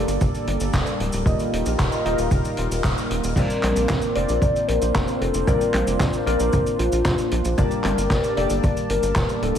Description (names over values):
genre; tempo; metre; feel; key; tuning
italo disco; 114 BPM; 4/4; straight; Bb major; A4 = 441 Hz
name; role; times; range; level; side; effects
warm analog pad; sustained chords; 0.0-9.6 s; G3 to A5; -27 LUFS; right 1 dB; chorus
chorused polysynth; stabs; 0.0-8.7 s; Bb3 to A5; -29 LUFS; left 1 dB; analog delay
tight sequencer bass; bass; 0.0-9.6 s; D1 to Bb1; -26 LUFS; equal; none
street-band drum kit; drums; 0.1-9.6 s; cabasa, crash cymbal, handclaps, hi-hat, snare drum, toms; -28 LUFS; equal; high-pass filter on hats, high-pass filter on cymbals, high-pass filter on toms, high-pass filter on snare, high-pass filter on perc, high-pass filter on room
kick drum; drums; 0.2-9.3 s; none; -24 LUFS; equal; none
soft octave-layered synth lead; melody; 3.4-9.6 s; F4 to D5; -24 LUFS; left 3 dB; chorus, phaser, diffuse ambient delay
room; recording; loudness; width
moderate plate reverb, RT60 1.6 s, studio ambience; dreamy mix soaked in reverb; -19 LUFS; side -9 dB against mid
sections
0.0-3.4 A section; 3.4-9.6 B section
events
filter sweep on analog polysynth 0.0-3.4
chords
0.0 Gmadd9; 1.3 Ebadd9; 3.4 Bbadd9; 7.6 Gmadd9